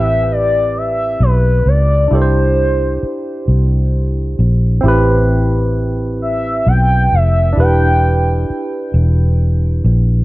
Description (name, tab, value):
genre	slow six-eight R&B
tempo	44 BPM (dotted quarters)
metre	6/8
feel	straight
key	A minor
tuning	A4 = 440 Hz
part	gliding portamento lead	melody	0.0-8.6 s	B4 to G5	-17 LUFS	left 1 dB	chorus, ping-pong delay
part	barky tine electric piano	accompaniment	0.0-10.2 s	C4 to C5	-20 LUFS	right 1 dB	overdrive, phaser
part	vintage muted fingered electric bass	bass	0.0-10.2 s	E1 to C#2	-13 LUFS	equal	none
room	little or no reverb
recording	worn, warbling old tape, cassette tape, warbly pitch drift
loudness	-12 LUFS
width	side -18 dB against mid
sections	0.0-10.2 A section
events	none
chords	0.0 Am9; 2.1 C; 4.8 Am9; 7.6 Em7